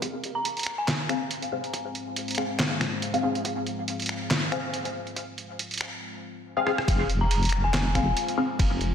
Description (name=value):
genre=deep dubstep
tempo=140 BPM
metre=4/4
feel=swing 55% on 16ths, half-time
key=F minor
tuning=A4 = 441 Hz
part: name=deep dark ambient pad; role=sustained chords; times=0.0-8.9 s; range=Ab3 to C5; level=-37 LUFS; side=left 1 dB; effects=chorus, built-in reverb, vintage 12-bit sampler grit
part: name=electronic kick drum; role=drums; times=0.0-8.7 s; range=none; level=-28 LUFS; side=equal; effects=overdrive, high-pass filter on kick, high-pass filter on room
part: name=trip hop sampler-style drum kit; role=drums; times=0.0-8.9 s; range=finger snaps, handclaps, hi-hat, ride cymbal, rim click, snare drum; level=-29 LUFS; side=equal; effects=none
part: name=dark detuned synth bell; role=melody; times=0.4-1.4, 7.2-8.2 s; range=Ab5 to Bb5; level=-32 LUFS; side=left 2 dB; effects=chorus, dub echo
part: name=filtered dub chord stab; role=stabs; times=1.1-8.4 s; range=C4 to F5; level=-30 LUFS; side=left 2 dB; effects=phaser, lush chorus, dub echo
part: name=deep soft wobble bass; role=bass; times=6.9-8.9 s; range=F1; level=-25 LUFS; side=equal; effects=chorus
room=wet lush hall reverb, RT60 1.8 s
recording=dreamy mix soaked in reverb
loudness=-25 LUFS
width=side -8 dB against mid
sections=0.0-6.9 A section; 6.9-8.9 B section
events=build-up 0.0-6.9; drum fill 6.7; drop 6.9-8.9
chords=0.0 Fm